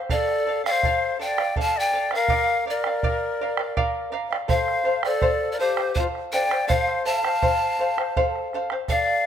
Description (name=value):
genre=andean folk, Andean ensemble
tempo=82 BPM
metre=3/4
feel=straight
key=unclear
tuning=A4 = 440 Hz
part: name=charango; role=accompaniment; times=0.0-9.3 s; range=A4 to F5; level=-27 LUFS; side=equal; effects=none
part: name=breathy mellow polished pan flute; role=melody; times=0.1-9.3 s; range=C5 to A5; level=-24 LUFS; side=equal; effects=none
part: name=breathy large quena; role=second line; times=0.1-9.3 s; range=F4 to F5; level=-28 LUFS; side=left 5 dB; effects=none
part: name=bombo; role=percussion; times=0.1-9.2 s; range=none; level=-27 LUFS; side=right 3 dB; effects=none
room=light reverb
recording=close, detailed microphones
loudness=-21 LUFS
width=side -9 dB against mid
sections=0.0-9.3 A section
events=none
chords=0.1 Dm; 2.3 Bb; 4.5 F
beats=| 0.10 0.84 1.57 | 2.31 3.05 3.78 | 4.51 5.25 5.98 | 6.71 7.44 8.16 | 8.89